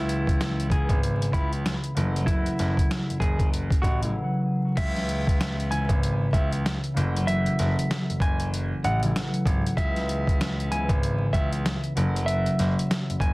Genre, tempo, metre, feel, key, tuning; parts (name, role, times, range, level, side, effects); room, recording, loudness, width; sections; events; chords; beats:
hip hop, boom-bap hip-hop; 96 BPM; 4/4; swing 61% on 16ths; C# minor; A4 = 440 Hz
clean electric guitar; melody; 0.0-13.3 s; E4 to G#5; -31 LUFS; right 1 dB; high-pass filter, low-pass filter, tape echo
concert harp; accompaniment; 0.0-13.3 s; C#3 to E4; -27 LUFS; equal; high-pass filter, low-pass filter
clear grand piano; bass; 0.0-13.3 s; F#1 to C#2; -28 LUFS; equal
boom bap sampler-style drum kit; drums; 0.1-13.3 s; crash cymbal, hi-hat, kick drum, snare drum; -26 LUFS; equal
light reverb; dense, heavily limited modern master, vinyl crackle; -22 LUFS; side -23 dB against mid
0.0-4.8 A section; 4.8-13.3 B section
silent gap 4.1-4.8
0.0 C#m7; 2.0 F#m7; 4.8 C#m7; 7.0 F#m7; 9.8 C#m7; 12.0 F#m7
0.40 1.02 1.65 | 2.27 2.90 3.52 4.15 | 4.77 5.40 6.02 6.65 | 7.27 7.90 8.52 9.15 | 9.77 10.40 11.02 11.65 | 12.27 12.90